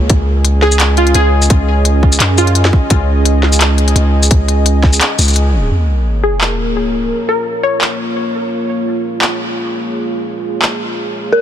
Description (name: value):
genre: half-time drum and bass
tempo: 171 BPM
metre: 4/4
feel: swing 55% on 16ths, half-time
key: Bb minor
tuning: A4 = 440 Hz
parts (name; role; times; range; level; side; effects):
- dark analog pad; sustained chords; 0.0-11.4 s; Bb3 to Ab5; -19 LUFS; right 1 dB; chorus, vintage 12-bit sampler grit, sidechain pumping
- long sustained 808-style bass; bass; 0.0-5.7 s; Db2 to Gb2; -12 LUFS; equal; none
- electronic kick drum; drums; 0.1-4.9 s; none; -11 LUFS; equal; overdrive
- industrial drum kit; drums; 0.1-10.7 s; handclaps, hi-hat, shaker, snare drum; -17 LUFS; left 1 dB; none
- glassy wavetable pluck; melody; 0.6-2.7, 6.2-8.1 s; F4 to Db5; -18 LUFS; equal; chorus, ping-pong delay
- sub drop; sound effects; 5.7-7.1 s; none; -16 LUFS; equal; none
- dark detuned synth bell; arpeggios; 11.3-11.4 s; Bb4; -8 LUFS; equal; chorus
room: light reverb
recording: dense, heavily limited modern master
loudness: -11 LUFS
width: side -10 dB against mid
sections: 0.0-5.7 A section; 5.7-11.4 B section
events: drop 0.0-5.7; kick drops out 5.4-5.7; impact 5.7-7.1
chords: 0.1 Db5; 5.7 Bbm